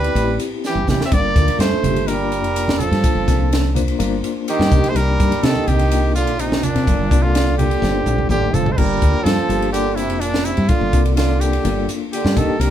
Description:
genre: electric jazz fusion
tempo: 125 BPM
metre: 4/4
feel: straight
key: G minor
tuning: A4 = 440 Hz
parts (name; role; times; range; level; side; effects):
- brilliant trumpet; melody; 0.0-12.7 s; D4 to E5; -23 LUFS; equal; none
- bright trombone; second line; 0.0-12.7 s; Bb2 to C4; -23 LUFS; right 5 dB; none
- reed electric piano; accompaniment; 0.0-12.7 s; Bb3 to C5; -24 LUFS; left 7 dB; fast tremolo
- woody fretless electric bass; bass; 0.0-12.7 s; F1 to C3; -19 LUFS; equal; none
- crisp fusion drum kit; drums; 0.0-12.7 s; crash cymbal, hi-hat, kick drum, ride cymbal, snare drum, toms; -21 LUFS; equal; none
- congas; percussion; 0.9-8.8 s; none; -26 LUFS; right 4 dB; none
room: moderate studio reverb, RT60 0.6 s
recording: band playing live in one room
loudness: -15 LUFS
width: side -10 dB against mid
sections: 0.0-8.8 A section; 8.8-12.7 A section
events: drum fill 0.6-1.1, 7.8-8.8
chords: 0.0 Am9; 1.1 Gm9; 4.7 Cm9; 6.9 Gm9

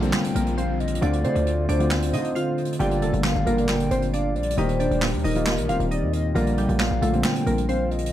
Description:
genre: hip hop, trap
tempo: 135 BPM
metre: 4/4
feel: half-time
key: unclear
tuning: A4 = 441 Hz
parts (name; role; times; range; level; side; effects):
- glassy digital keys; melody; 0.0-7.9 s; G3 to G5; -27 LUFS; equal; chorus, digital delay
- hollow clarinet-like synth lead; second line; 0.0-8.1 s; Bb4 to G5; -30 LUFS; left 3 dB; chorus, digital delay
- dark baby grand piano; accompaniment; 0.0-8.1 s; Bb2 to G4; -27 LUFS; equal; none
- dark analog pad; sustained chords; 0.0-8.1 s; Bb2 to G4; -30 LUFS; equal; chorus
- distorted 808-style bass; bass; 0.0-8.1 s; Eb1 to D3; -26 LUFS; equal; distortion
- jazz brush drum kit; drums; 0.0-8.1 s; handclaps, hi-hat, snare drum; -30 LUFS; right 2 dB; none
- downlifter; sound effects; 0.0-2.8 s; none; -42 LUFS; right 1 dB; none
room: small room ambience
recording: dark, warm production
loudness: -20 LUFS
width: side -12 dB against mid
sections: 0.0-8.1 A section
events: none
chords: 0.0 Bb6; 1.0 Dm7; 2.8 Gm7; 4.6 Eb; 6.4 Bb6

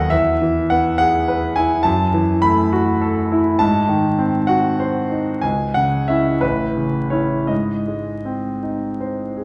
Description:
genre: classical, romantic character piece for solo piano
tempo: 52-71 BPM (dotted quarters)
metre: 6/8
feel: rubato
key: unclear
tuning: A4 = 439 Hz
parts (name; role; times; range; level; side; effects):
- clear concert grand piano; solo; 0.0-9.4 s; A1 to B5; -18 LUFS; equal; none
room: wet recital hall reverb, RT60 1.4 s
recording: recorded in a church or concert hall, vinyl crackle, nothing above 10.8 kHz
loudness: -19 LUFS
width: mono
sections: 0.0-9.4 A section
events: none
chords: 0.1 E; 1.9 F#m7; 3.6 G#7b9; 5.4 C#m; 6.4 A; 7.5 G#

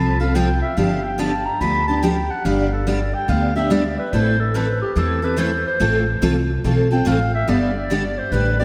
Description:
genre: acoustic string swing (jazz manouche)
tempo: 143 BPM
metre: 4/4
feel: swing 64% on 8ths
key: unclear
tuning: A4 = 441 Hz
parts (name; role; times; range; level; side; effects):
- growling clarinet; second line; 0.0-8.6 s; G4 to B5; -25 LUFS; equal; delay
- picked steel-string acoustic guitar; accompaniment; 0.0-8.6 s; D3 to A4; -23 LUFS; equal; ensemble chorus
- upright bass; bass; 0.0-8.6 s; G1 to E2; -24 LUFS; equal; none
room: wet lush hall reverb, RT60 2.2 s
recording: dreamy mix soaked in reverb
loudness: -19 LUFS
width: mono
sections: 0.0-8.6 A section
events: clarinet solo 0.0-8.6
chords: 0.0 F; 0.8 G7; 2.5 G; 4.1 Am; 5.8 Fmaj7/A; 7.5 G

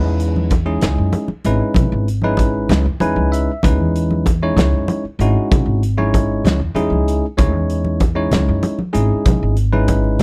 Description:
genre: electric jazz fusion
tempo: 64 BPM (dotted quarters)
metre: 6/8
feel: straight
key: C# minor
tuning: A4 = 440 Hz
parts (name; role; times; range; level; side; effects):
- bell-like tine electric piano; accompaniment; 0.0-10.2 s; G#3 to G#5; -22 LUFS; equal; none
- upright bass; bass; 0.0-10.2 s; G#1 to C#3; -20 LUFS; equal; none
- modern studio drum kit; drums; 0.2-10.2 s; hi-hat, kick drum, snare drum; -21 LUFS; equal; none
- congas; percussion; 0.4-10.2 s; none; -24 LUFS; equal; none
room: little or no reverb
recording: none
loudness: -17 LUFS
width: mono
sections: 0.0-10.2 A section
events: tine electric piano fill 2.7-3.6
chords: 0.0 C#m9

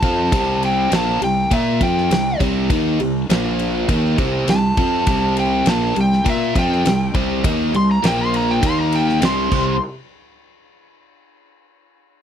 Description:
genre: blues rock power trio and southern rock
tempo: 101 BPM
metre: 4/4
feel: straight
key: unclear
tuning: A4 = 443 Hz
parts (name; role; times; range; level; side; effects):
- overdriven slide guitar; melody; 0.0-9.8 s; E5 to C6; -21 LUFS; equal; none
- biting overdriven guitar; riff; 0.0-9.8 s; Bb2 to Bb4; -19 LUFS; right 1 dB; none
- fuzz fingered electric bass; bass; 0.0-9.8 s; Bb1 to Bb2; -23 LUFS; equal; overdrive
- huge arena drum kit; drums; 0.0-9.7 s; crash cymbal, kick drum, ride cymbal, snare drum; -22 LUFS; equal; none
room: little or no reverb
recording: dry, close 1970s-style studio recording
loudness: -15 LUFS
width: side -9 dB against mid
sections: 0.0-9.8 A section; 9.8-12.2 B section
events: electric slide guitar solo 0.0-9.8; drum fill 9.5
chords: 0.0 C5; 3.3 Bb5; 3.9 C5; 8.0 Bb5; 8.6 Eb5; 9.2 C5; 9.8 N.C.

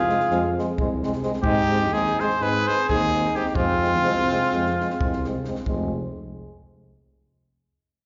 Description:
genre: balkan folk, Balkan brass band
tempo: 255 BPM (eighths)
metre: 9/8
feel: straight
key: F minor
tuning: A4 = 441 Hz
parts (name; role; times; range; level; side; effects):
- clear trumpet; melody; 0.0-5.3 s; F4 to C5; -25 LUFS; equal; none
- warm alto saxophone; second line; 0.0-5.3 s; C4 to Ab4; -29 LUFS; equal; slapback echo
- mellow tuba; bass; 0.0-5.9 s; F1 to Ab2; -29 LUFS; equal; none
- clear euphonium; accompaniment; 0.1-5.9 s; Ab3; -33 LUFS; equal; slapback echo
- mellow French horn; accompaniment; 0.1-5.9 s; C4; -36 LUFS; equal; slapback echo
- compact cocktail drum kit; percussion; 0.1-5.9 s; kick drum, snare drum; -34 LUFS; equal; none
room: little or no reverb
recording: live gig heard through the venue's PA, recital hall reverb, nothing above 7.5 kHz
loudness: -23 LUFS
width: mono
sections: 0.0-5.7 A section; 5.7-7.8 B section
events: none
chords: 0.0 Fm; 1.4 Ab; 3.6 Fm

